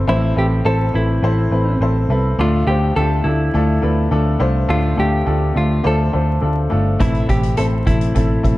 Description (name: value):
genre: piano-driven pop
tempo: 104 BPM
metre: 4/4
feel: straight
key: A minor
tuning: A4 = 440 Hz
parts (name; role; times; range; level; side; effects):
- bright upright piano; accompaniment; 0.0-8.6 s; A2 to D5; -20 LUFS; left 2 dB; none
- vintage muted picked electric bass; bass; 0.0-8.6 s; G1 to D2; -17 LUFS; equal; none
- semi-hollow electric guitar; melody; 0.1-8.6 s; E4 to A4; -22 LUFS; equal; none
- soft-mallet drum kit; drums; 7.0-8.6 s; hi-hat, kick drum; -18 LUFS; equal; none
room: light reverb, studio reverb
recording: dark, warm production, vinyl crackle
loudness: -14 LUFS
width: side -17 dB against mid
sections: 0.0-8.6 A section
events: none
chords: 0.0 Am; 2.4 Dm; 7.0 Am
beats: | 0.08 0.66 1.23 1.81 | 2.39 2.96 3.54 4.12 | 4.70 5.27 5.85 6.43 | 7.00 7.58 8.16